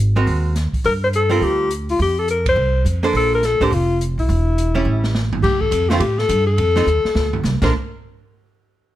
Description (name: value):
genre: jazz, small-group swing and bop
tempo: 209 BPM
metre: 4/4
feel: swing 62% on 8ths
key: Bb major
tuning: A4 = 435 Hz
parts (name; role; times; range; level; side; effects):
- upright bass; bass; 0.0-7.7 s; E1 to A2; -19 LUFS; right 1 dB; none
- archtop guitar, miked and amplified; accompaniment; 0.2-7.7 s; D3 to C5; -21 LUFS; right 4 dB; none
- open jazz drum kit; drums; 0.3-7.7 s; crash cymbal, hi-hat, kick drum, ride cymbal, snare drum, toms; -25 LUFS; right 1 dB; none
- mellow alto saxophone; melody; 0.9-7.7 s; E4 to C5; -18 LUFS; left 3 dB; plate reverb
room: light reverb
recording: none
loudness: -15 LUFS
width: side -13 dB against mid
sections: 0.0-5.4 A section; 5.4-7.7 B section; 7.7-8.9 C section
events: band accent 2.4; drum fill 4.9-5.4, 6.9-7.4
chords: 0.0 Ab9; 0.8 Gm11; 2.0 F5; 3.1 Bbmaj9; 4.3 Em6; 4.9 A7; 5.4 Dm; 6.6 F7; 7.6 Bbmaj9; 7.7 N.C.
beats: 0.27 0.56 | 0.84 1.13 1.42 1.71 | 1.99 2.28 2.56 2.85 | 3.14 3.42 3.71 4.00 | 4.29 4.57 4.86 5.15 | 5.43 5.72 6.01 6.29 | 6.58 6.87 7.15 7.44